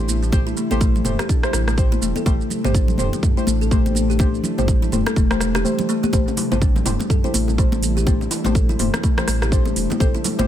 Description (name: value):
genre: afro house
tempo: 124 BPM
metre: 4/4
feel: swing 59% on 16ths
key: A minor pentatonic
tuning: A4 = 441 Hz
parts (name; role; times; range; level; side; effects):
- ethereal airy pad; sustained chords; 0.0-10.5 s; C3 to E4; -28 LUFS; left 1 dB; ensemble chorus, built-in reverb, sidechain pumping
- deep mellow chord stab; stabs; 0.0-10.5 s; A3 to C5; -28 LUFS; left 2 dB; wide subtle chorus, sidechain pumping, dub echo
- warm sub bass; bass; 0.0-10.5 s; E1 to A1; -23 LUFS; equal; sidechain pumping
- kalimba; arpeggios; 0.1-10.3 s; E3 to A4; -25 LUFS; left 3 dB; sidechain pumping, dub echo
- house drum kit; drums; 0.1-10.5 s; hi-hat, rim click, shaker, toms; -26 LUFS; right 2 dB; none
- congas; percussion; 0.1-10.5 s; none; -28 LUFS; right 1 dB; none
- electronic kick drum; drums; 0.3-10.1 s; none; -18 LUFS; equal; none
- bongos; percussion; 6.3-10.5 s; none; -32 LUFS; left 3 dB; none
room: little or no reverb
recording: none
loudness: -16 LUFS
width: side -11 dB against mid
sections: 0.0-10.5 A section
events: none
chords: 0.0 Am7